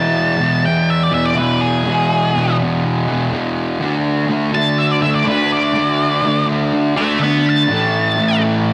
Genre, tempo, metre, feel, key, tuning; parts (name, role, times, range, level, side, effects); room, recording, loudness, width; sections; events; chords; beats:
rock; 123 BPM; 4/4; straight; E mixolydian; A4 = 440 Hz
octave-fuzz lead guitar; melody; 0.0-8.4 s; G#4 to B5; -21 LUFS; equal; distortion, cassette tape
fuzz guitar; riff; 0.0-8.7 s; E2 to D4; -18 LUFS; equal; distortion
moderate lush hall reverb, RT60 2.6 s; home recording on cassette; -16 LUFS; mono
0.0-8.7 A section
lead electric guitar solo 0.0-8.7
0.0 E; 3.8 D5; 7.7 A5
0.40 0.89 1.38 | 1.86 2.35 2.83 3.32 | 3.81 4.29 4.78 5.26 | 5.75 6.24 6.72 7.21 | 7.70 8.18 8.67